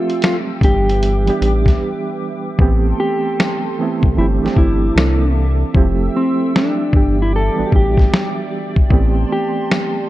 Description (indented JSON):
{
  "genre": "lo-fi hip hop",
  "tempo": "76 BPM",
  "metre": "4/4",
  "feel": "swing 65% on 16ths",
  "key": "A minor",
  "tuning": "A4 = 444 Hz",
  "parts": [
    { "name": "mellow electric guitar", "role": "melody", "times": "0.0-10.1 s", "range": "C4 to A4", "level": "-20 LUFS", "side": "left 1 dB", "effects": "low-pass filter" },
    { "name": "reed electric piano", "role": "accompaniment", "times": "0.0-10.1 s", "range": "E3 to E5", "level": "-20 LUFS", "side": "right 4 dB", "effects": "fast tremolo, low-pass filter" },
    { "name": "hollow soft pad", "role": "sustained chords", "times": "0.0-10.1 s", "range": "Bb3 to E6", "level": "-29 LUFS", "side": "equal", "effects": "ensemble chorus, low-pass filter" },
    { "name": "lo-fi sampler-style drum kit", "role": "drums", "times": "0.1-9.9 s", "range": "hi-hat, kick drum, snare drum", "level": "-16 LUFS", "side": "left 1 dB", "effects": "none" },
    { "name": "round analog bass", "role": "bass", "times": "0.6-9.2 s", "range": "F1 to C2", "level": "-17 LUFS", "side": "equal", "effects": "none" }
  ],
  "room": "digital ambience",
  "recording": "dark, warm production, nothing above 10.8 kHz",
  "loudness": "-13 LUFS",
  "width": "side -15 dB against mid",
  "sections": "0.0-2.6 A section; 2.6-10.1 B section",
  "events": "break 1.8-2.6; hi-hats muted 2.6-10.1",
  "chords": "0.0 Fmaj9; 0.6 Em7/G; 2.6 Am9; 4.2 C69/G; 5.0 C13; 5.7 Fmaj9; 6.9 Em7/G; 8.9 Am9",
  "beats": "0.22 1.01 1.80 | 2.59 3.38 4.17 4.96 | 5.75 6.54 7.33 8.12 | 8.90 9.69"
}